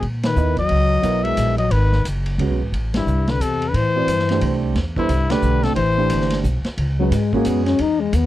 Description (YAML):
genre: modal jazz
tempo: 177 BPM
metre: 3/4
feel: swing 62% on 8ths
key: unclear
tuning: A4 = 438 Hz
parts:
  - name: warm trumpet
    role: melody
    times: 0.0-6.4 s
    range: E4 to E5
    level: -22 LUFS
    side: left 2 dB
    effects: none
  - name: warm trombone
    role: second line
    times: 0.0-8.3 s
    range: G2 to D#4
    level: -22 LUFS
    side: left 6 dB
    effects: none
  - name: upright bass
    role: bass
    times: 0.0-8.3 s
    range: F#1 to A#2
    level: -20 LUFS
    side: equal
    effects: none
  - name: vintage drum kit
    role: drums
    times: 0.0-8.2 s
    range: hi-hat, kick drum, ride cymbal, snare drum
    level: -30 LUFS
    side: equal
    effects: none
  - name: warm grand piano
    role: accompaniment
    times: 0.4-7.8 s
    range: F#3 to D#5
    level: -24 LUFS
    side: right 8 dB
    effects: none
room: little or no reverb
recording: dry, close 1970s-style studio recording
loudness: -17 LUFS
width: side -14 dB against mid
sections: 0.0-6.8 A section; 6.8-8.3 B section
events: band accent 0.2, 2.9, 5.3; trombone solo 6.8-8.3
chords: 0.0 C#m11; 2.7 Am11; 6.8 C#madd11